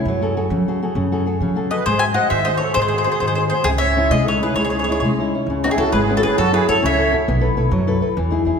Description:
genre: italian folk, Italian serenade.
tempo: 134 BPM (dotted quarters).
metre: 6/8.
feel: rubato.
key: C# minor.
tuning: A4 = 440 Hz.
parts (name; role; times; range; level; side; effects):
flamenco guitar; accompaniment; 0.0-8.6 s; C#3 to B#4; -21 LUFS; left 2 dB; none.
upright bass; bass; 0.1-8.6 s; G#1 to F#3; -22 LUFS; right 1 dB; none.
mandolin; melody; 1.7-7.2 s; F#4 to G#5; -20 LUFS; left 2 dB; none.
musette accordion; second line; 1.7-7.1 s; D#4 to E5; -24 LUFS; right 6 dB; none.
room: wet concert hall reverb, RT60 2.1 s.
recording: recorded in a church or concert hall.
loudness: -16 LUFS.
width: side -6 dB against mid.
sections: 0.0-5.5 A section; 5.5-8.6 B section.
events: none.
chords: 0.1 F#madd9; 1.9 G#7; 3.7 C#madd9; 5.5 C#m7; 6.4 F#m7; 7.3 B7sus4.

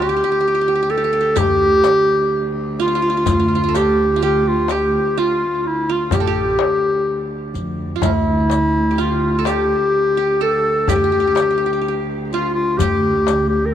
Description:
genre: Turkish makam ensemble.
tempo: 126 BPM (eighths).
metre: 10/8.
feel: straight.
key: D makam ussak.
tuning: A4 = 440 Hz.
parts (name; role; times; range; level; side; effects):
warm clarinet; melody; 0.0-13.7 s; E4-35c to Bb4; -17 LUFS; left 1 dB; none.
qanun; second line; 0.0-13.7 s; E4-30c to A4; -24 LUFS; right 9 dB; tape echo.
upright bass; bass; 0.0-13.7 s; A1 to F2; -21 LUFS; equal; none.
dark cello; drone; 0.0-13.7 s; D2; -28 LUFS; equal; none.
darbuka; percussion; 0.9-13.5 s; none; -24 LUFS; left 5 dB; none.
riq; percussion; 1.4-13.5 s; none; -30 LUFS; left 13 dB; none.
room: moderate plate reverb, RT60 3.3 s.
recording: 1960s-style stereo with parts hard left and right.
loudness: -15 LUFS.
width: side -10 dB against mid.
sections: 0.0-13.7 A section.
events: none.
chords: none.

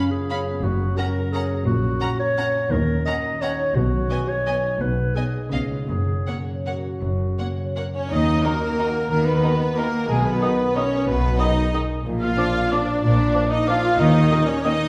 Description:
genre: classical, orchestral ballroom waltz.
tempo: 153-198 BPM.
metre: 3/4.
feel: rubato.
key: F# major, Eb minor from 8.1 s.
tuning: A4 = 440 Hz.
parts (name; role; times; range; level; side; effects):
rich symphonic violin section; melody; 0.0-14.7 s; Bb3 to B5; -37 LUFS; equal; none.
mellow clarinet; second line; 0.0-14.8 s; C#4 to D#5; -30 LUFS; equal; none.
rich studio violin section; second line; 0.0-14.9 s; Ab4 to F#5; -33 LUFS; equal; none.
rich symphonic viola section; accompaniment; 0.0-14.9 s; Ab3 to F4; -31 LUFS; equal; none.
concert harp; arpeggios; 0.0-14.9 s; F#2 to Ab5; -31 LUFS; equal; none.
rich symphonic double bass section; bass; 0.6-14.3 s; F#1 to D#2; -28 LUFS; equal; none.
warm symphonic cello section; bass; 0.6-14.3 s; F#2 to D#3; -28 LUFS; equal; none.
mellow cor anglais; second line; 7.9-14.9 s; Ab4 to F5; -28 LUFS; equal; none.
clear French horn section; sustained chords; 7.9-14.9 s; Ab3 to F4; -30 LUFS; equal; none.
mellow hollow concert flute; second line; 8.5-14.7 s; Bb5 to Eb6; -34 LUFS; equal; none.
mellow bassoon; accompaniment; 8.5-14.8 s; Eb3 to F3; -35 LUFS; equal; none.
room: wet recital hall reverb, RT60 1.4 s.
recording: recorded in a church or concert hall.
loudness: -22 LUFS.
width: mono.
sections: 0.0-8.1 A section; 8.1-14.9 B section.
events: none.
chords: 0.0 C#7/F#; 0.6 F#; 1.7 F#/A#; 2.7 D#m7; 3.8 B6; 4.8 G#m/B; 5.5 C#9; 5.9 F#; 8.1 Ebm; 10.1 Abm/Cb; 12.1 Bb; 14.0 Eb5.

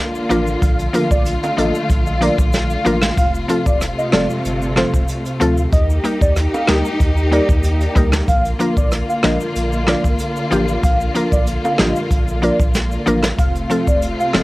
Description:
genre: dancehall.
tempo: 94 BPM.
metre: 4/4.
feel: straight.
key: Bb major.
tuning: A4 = 440 Hz.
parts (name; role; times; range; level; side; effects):
warm symphonic string section; sustained chords; 0.0-14.4 s; C3 to G4; -22 LUFS; left 1 dB; sidechain pumping, cassette tape.
impact; sound effects; 0.0-0.6 s; none; barely audible; none; none.
egg shaker and timbales; percussion; 0.1-14.3 s; none; -34 LUFS; right 3 dB; none.
mallet-like synth pluck; accompaniment; 0.3-14.4 s; F3 to Bb4; -19 LUFS; left 1 dB; chorus, cassette tape.
warm sub bass; bass; 0.3-14.4 s; F1 to Eb2; -21 LUFS; equal; none.
jazz brush drum kit; drums; 0.3-14.4 s; hi-hat, kick drum, rim click, snare drum; -18 LUFS; equal; cassette tape.
warm velvety synth lead; melody; 0.6-14.4 s; C5 to F5; -23 LUFS; equal; chorus, cassette tape, tape echo.
room: studio reverb.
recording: home recording on cassette.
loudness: -14 LUFS.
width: side -19 dB against mid.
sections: 0.0-14.4 A section.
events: impact 0.0-0.6.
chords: 0.0 Bb; 3.2 F; 5.7 Eb; 8.3 Bb; 13.4 F.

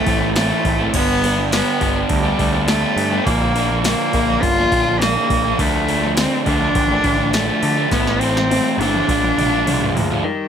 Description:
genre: quiet-loud alternative rock.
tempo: 103 BPM.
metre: 4/4.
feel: straight.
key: unclear.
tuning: A4 = 440 Hz.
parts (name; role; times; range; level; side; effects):
rich cello; melody; 0.0-10.5 s; F3 to F4; -19 LUFS; equal; slapback echo.
crunchy overdriven guitar; riff; 0.0-10.2 s; G2 to F4; -20 LUFS; right 1 dB; none.
growling picked electric bass; bass; 0.1-10.2 s; G1 to D3; -23 LUFS; equal; overdrive.
electro analog drum machine; drums; 0.1-10.2 s; crash cymbal, hi-hat, kick drum, snare drum, toms; -22 LUFS; equal; overdrive.
electric guitar through a small old amp; arpeggios; 10.2-10.5 s; Eb3; -22 LUFS; left 7 dB; slapback echo.
room: light reverb.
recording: none.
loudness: -15 LUFS.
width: side -8 dB against mid.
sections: 0.0-10.2 A section.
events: drum fill 7.9-10.2.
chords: 0.0 Am; 0.9 G; 3.3 Bb; 5.6 Dm; 7.9 Am; 9.1 Bb7.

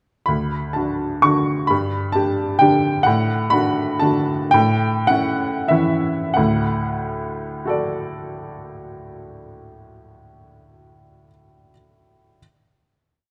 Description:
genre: classical, piano waltz.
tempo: 87-137 BPM.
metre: 3/4.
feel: rubato.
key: D major.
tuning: A4 = 441 Hz.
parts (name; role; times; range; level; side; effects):
clear upright piano; solo; 0.3-12.4 s; D2 to C#6; -20 LUFS; equal; none.
room: moderate scoring stage reverb, RT60 2.0 s.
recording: close, detailed microphones.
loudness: -19 LUFS.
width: mono.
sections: 0.3-6.4 A section; 6.4-10.2 final chord.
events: slowing down 2.4-6.4.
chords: 0.3 D; 1.7 G; 3.1 D/A; 4.5 A7; 6.4 D.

